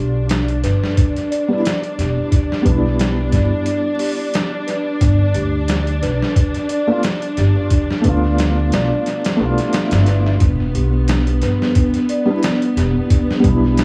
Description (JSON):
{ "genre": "trip hop", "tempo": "89 BPM", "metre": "4/4", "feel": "swing 55% on 16ths", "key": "E phrygian", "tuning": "A4 = 441 Hz", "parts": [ { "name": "warm studio string section", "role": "sustained chords", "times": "0.0-13.8 s", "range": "B3 to D4", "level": "-26 LUFS", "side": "equal", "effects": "none" }, { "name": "large celesta", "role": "arpeggios", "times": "0.0-13.8 s", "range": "D4 to D5", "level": "-26 LUFS", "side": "equal", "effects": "tape echo" }, { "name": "upright bass", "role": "bass", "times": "0.0-13.8 s", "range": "E1 to D2", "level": "-20 LUFS", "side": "equal", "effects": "none" }, { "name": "trip hop sampler-style drum kit", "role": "drums", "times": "0.3-13.8 s", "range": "hi-hat, kick drum, snare drum", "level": "-22 LUFS", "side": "equal", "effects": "tape echo" }, { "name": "felt-muted upright piano", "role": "accompaniment", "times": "1.5-13.8 s", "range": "G3 to F4", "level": "-23 LUFS", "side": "equal", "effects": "tremolo, tape echo" }, { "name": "swell", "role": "sound effects", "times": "9.9-10.4 s", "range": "none", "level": "-37 LUFS", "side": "equal", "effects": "none" } ], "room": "studio ambience", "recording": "echo-heavy mix, vinyl crackle", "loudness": "-17 LUFS", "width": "mono", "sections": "0.0-10.4 A section; 10.4-13.8 B section", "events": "none", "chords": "0.0 Em7; 5.0 G7; 10.4 Em7" }